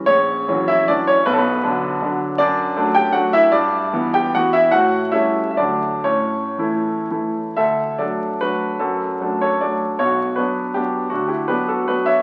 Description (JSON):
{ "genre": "classical, romantic triple-time dance for piano with dotted rhythms", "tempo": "108-171 BPM", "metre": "3/4", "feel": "rubato", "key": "D major", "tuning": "A4 = 440 Hz", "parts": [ { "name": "clear baby grand piano", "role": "solo", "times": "0.0-12.2 s", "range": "A#1 to G5", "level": "-19 LUFS", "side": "equal", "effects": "none" } ], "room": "wet recital hall reverb, RT60 1.7 s", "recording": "very old 78 rpm record, vinyl crackle", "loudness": "-19 LUFS", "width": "mono", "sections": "0.0-7.6 A section; 7.6-12.2 B section", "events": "none", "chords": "0.1 F#7/A#; 1.3 Bm; 2.4 D/F#; 3.5 Em7/G; 4.7 A7; 5.6 D; 6.0 A; 7.6 D; 8.8 D/F#; 10.0 Bm; 11.1 Bm/D" }